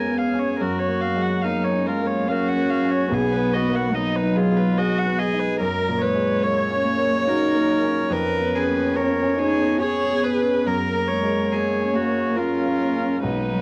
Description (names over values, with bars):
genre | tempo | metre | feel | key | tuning
neoclassical piano and strings | 72 BPM | 3/4 | rubato | F# major | A4 = 439 Hz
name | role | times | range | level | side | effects
warm violin | melody | 0.0-13.6 s | D#4 to C#5 | -28 LUFS | equal | none
dark cello | second line | 0.0-13.6 s | F#3 to G#4 | -27 LUFS | equal | none
warm grand piano | accompaniment | 0.0-13.6 s | B1 to A#4 | -28 LUFS | equal | none
warm viola | accompaniment | 0.0-13.6 s | G#4 to G#5 | -28 LUFS | equal | none
ethereal airy pad | sustained chords | 0.0-13.6 s | F#3 to E#5 | -34 LUFS | equal | none
room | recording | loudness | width
light reverb | home recording on cassette | -22 LUFS | mono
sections
0.0-13.6 A section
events
none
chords
0.0 C#7/E#; 0.6 F#maj7; 3.1 B6; 5.6 F#maj7; 8.1 C#7/E#; 10.7 F#maj7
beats
| 0.60 1.44 2.29 | 3.12 3.95 4.78 | 5.60 6.42 7.28 | 8.12 8.95 9.81 | 10.66 11.51 12.37 | 13.24